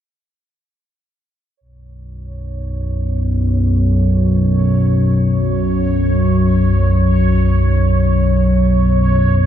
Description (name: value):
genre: dark ambient drone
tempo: free time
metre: none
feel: none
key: unclear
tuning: A4 = 440 Hz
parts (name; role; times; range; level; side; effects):
- analog drone; drone; 2.2-9.5 s; B1 to F#2; -13 LUFS; equal; chorus
- bubbling stepped-filter texture; texture; 1.6-9.5 s; C#5; -24 LUFS; right 1 dB; chorus, built-in reverb, shimmer reverb
room: moderate huge ambient reverb, RT60 8.1 s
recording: dreamy mix soaked in reverb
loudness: -12 LUFS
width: side -10 dB against mid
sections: 1.6-9.5 A section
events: fade-in on synth texture 1.6-9.5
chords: 1.6 Bsus2